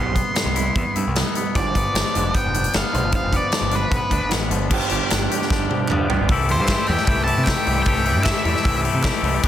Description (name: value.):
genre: indie rock.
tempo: 152 BPM.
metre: 4/4.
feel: straight.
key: C major.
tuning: A4 = 439 Hz.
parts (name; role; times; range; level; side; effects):
octave-fuzz lead guitar; melody; 0.0-8.8 s; B4 to C6; -25 LUFS; right 1 dB; distortion.
electric guitar through a small old amp; riff; 0.0-6.3 s; G2 to G4; -28 LUFS; right 9 dB; wide subtle chorus, analog delay.
twangy electric guitar; riff; 0.0-9.5 s; E3 to G4; -25 LUFS; left 5 dB; none.
growling picked electric bass; bass; 0.0-9.5 s; F1 to C3; -24 LUFS; equal; overdrive.
big rock drum kit; drums; 0.2-9.5 s; crash cymbal, hi-hat, kick drum, snare drum, toms; -22 LUFS; equal; none.
combo organ; sustained chords; 4.7-9.5 s; G4 to D6; -34 LUFS; equal; none.
group handclap; percussion; 5.1-9.1 s; none; -33 LUFS; right 4 dB; none.
room: small room reverb.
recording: dense, heavily limited modern master.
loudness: -18 LUFS.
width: side -11 dB against mid.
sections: 0.0-4.7 A section; 4.7-6.3 B section; 6.3-9.5 C section.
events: drum fill 5.5-6.3.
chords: 0.0 Cmaj7; 1.6 G7; 6.3 C6.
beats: 0.36 0.76 1.16 | 1.55 1.95 2.34 2.74 | 3.13 3.53 3.92 4.32 | 4.71 5.11 5.50 5.90 | 6.29 6.68 7.08 7.47 | 7.86 8.26 8.65 9.04 | 9.43.